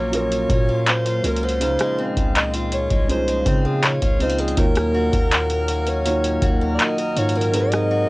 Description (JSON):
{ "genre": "contemporary R&B", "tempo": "81 BPM", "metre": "4/4", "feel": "straight", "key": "Eb dorian", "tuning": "A4 = 435 Hz", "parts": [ { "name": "breathy alto saxophone", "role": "melody", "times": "0.0-8.1 s", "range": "Ab4 to Eb5", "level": "-24 LUFS", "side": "equal", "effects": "cassette tape" }, { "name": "felt-muted upright piano", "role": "accompaniment", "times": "0.0-8.1 s", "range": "Ab2 to Eb5", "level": "-26 LUFS", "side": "right 2 dB", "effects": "none" }, { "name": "warm analog pad", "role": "sustained chords", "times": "0.0-8.1 s", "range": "Bb2 to Bb4", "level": "-28 LUFS", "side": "left 1 dB", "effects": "chorus" }, { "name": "picked acoustic archtop guitar", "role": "arpeggios", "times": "0.0-8.1 s", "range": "Bb2 to Bb4", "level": "-28 LUFS", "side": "equal", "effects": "none" }, { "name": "long sustained 808-style bass", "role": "bass", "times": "0.0-8.1 s", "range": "Bb1 to Db3", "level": "-24 LUFS", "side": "equal", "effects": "none" }, { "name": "booming analog drum machine", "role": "drums", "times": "0.1-7.9 s", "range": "handclaps, hi-hat, kick drum, rim click", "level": "-20 LUFS", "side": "equal", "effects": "vintage 12-bit sampler grit, cassette tape" } ], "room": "light reverb", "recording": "home recording on cassette", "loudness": "-17 LUFS", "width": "side -21 dB against mid", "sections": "0.0-8.1 A section", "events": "none", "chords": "0.0 Gbmaj7/Bb; 1.6 Dbmaj7; 4.6 Ebm7; 7.5 Ab7", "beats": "0.13 0.87 | 1.61 2.35 3.09 3.83 | 4.57 5.31 6.05 6.79 | 7.54" }